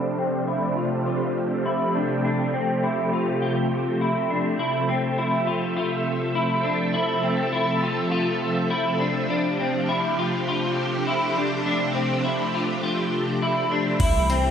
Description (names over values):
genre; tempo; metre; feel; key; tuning
dream pop; 102 BPM; 4/4; straight; unclear; A4 = 442 Hz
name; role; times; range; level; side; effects
string machine, violins; sustained chords; 0.0-14.5 s; C3 to E5; -24 LUFS; right 1 dB; ensemble chorus, low-pass filter
clean electric guitar; arpeggios; 0.0-14.5 s; C4 to F4; -25 LUFS; left 1 dB; analog chorus, low-pass filter, tape echo
round analog bass; bass; 14.0-14.5 s; C2; -24 LUFS; equal; none
booming analog drum machine; drums; 14.0-14.4 s; crash cymbal, kick drum, tambourine, toms; -23 LUFS; equal; overdrive
room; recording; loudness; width
wet recital hall reverb, RT60 1.5 s; none; -21 LUFS; side -8 dB against mid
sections
0.0-14.0 A section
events
filter sweep 0.0-14.0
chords
0.0 G9sus4/C; 4.6 Fmaj7/C; 9.3 G9sus4/C; 14.0 C6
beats
0.47 1.06 1.65 | 2.24 2.83 3.41 4.00 | 4.59 5.18 5.77 6.36 | 6.94 7.53 8.12 8.71 | 9.30 9.88 10.47 11.06 | 11.65 12.24 12.83 13.41 | 14.00